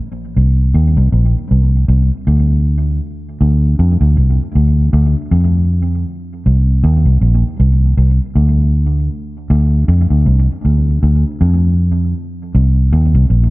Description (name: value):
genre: reggae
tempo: 79 BPM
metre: 4/4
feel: swing 58% on 16ths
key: D phrygian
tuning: A4 = 440 Hz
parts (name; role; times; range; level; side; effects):
- vintage muted fingered electric bass; solo; 0.4-13.5 s; Bb1 to F2; -11 LUFS; equal; tape echo
room: little or no reverb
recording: none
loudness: -11 LUFS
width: side -21 dB against mid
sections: 0.0-12.2 A section; 12.2-13.5 B section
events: none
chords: none